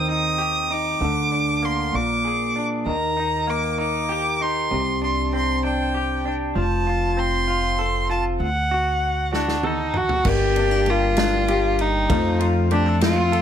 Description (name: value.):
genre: six-eight pop ballad.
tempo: 65 BPM (dotted quarters).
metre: 6/8.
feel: straight.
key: G minor.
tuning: A4 = 440 Hz.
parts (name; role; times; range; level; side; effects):
warm violin; melody; 0.0-13.4 s; D4 to Eb6; -23 LUFS; right 1 dB; none.
direct-recorded clean electric guitar; accompaniment; 0.0-13.4 s; G2 to A4; -25 LUFS; left 1 dB; double-tracked left and right.
upright bass; bass; 0.0-13.4 s; F1 to F2; -25 LUFS; equal; none.
natural country drum kit; drums; 9.3-13.4 s; crash cymbal, kick drum, ride cymbal, snare drum, toms; -26 LUFS; equal; none.
fingerpicked steel-string acoustic guitar; arpeggios; 10.2-13.4 s; A3 to G4; -26 LUFS; left 6 dB; none.
room: light reverb, small room reverb.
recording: none.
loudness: -19 LUFS.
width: side -9 dB against mid.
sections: 0.0-10.2 A section; 10.2-13.4 B section.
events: drum fill 9.3-10.2.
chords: 0.0 Cm/Eb; 1.0 Bbadd9/D; 1.9 Bb7; 2.9 Eb; 4.7 Csus2; 6.6 F; 8.4 D; 10.2 Gm; 12.1 F.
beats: 0.09 | 1.01 1.94 | 2.86 3.78 | 4.71 5.63 | 6.55 7.48 | 8.40 9.32 | 10.25 11.17 | 12.09 13.02.